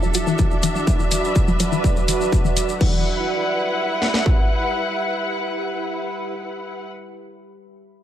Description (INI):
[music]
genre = melodic techno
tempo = 124 BPM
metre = 4/4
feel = straight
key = E minor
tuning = A4 = 442 Hz
[part]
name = muted studio string section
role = sustained chords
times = 0.0-6.8 s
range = D4 to F#5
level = -25 LUFS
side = left 1 dB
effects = sidechain pumping
[part]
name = tight sequenced synth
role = arpeggios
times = 0.0-3.0 s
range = E3 to F#3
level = -25 LUFS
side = left 3 dB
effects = chorus, vintage 12-bit sampler grit, sidechain pumping, digital delay
[part]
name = maracas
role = percussion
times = 0.0-2.8 s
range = none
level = -30 LUFS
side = left 3 dB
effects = none
[part]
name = deep dark ambient pad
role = texture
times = 0.0-7.0 s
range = E4 to B5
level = -26 LUFS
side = right 3 dB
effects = chorus, built-in reverb, sidechain pumping
[part]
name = techno drum kit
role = drums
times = 0.1-2.9 s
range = crash cymbal, hi-hat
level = -27 LUFS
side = equal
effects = sidechain pumping on hats, sidechain pumping on cymbals
[part]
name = techno drum kit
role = drums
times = 0.4-4.4 s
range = kick drum, snare drum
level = -19 LUFS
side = equal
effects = distortion
[sound]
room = moderate scoring stage reverb, RT60 1.8 s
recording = none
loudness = -18 LUFS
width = side -11 dB against mid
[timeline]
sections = 0.0-2.8 A section; 2.8-6.7 B section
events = none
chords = 0.0 D; 2.8 Em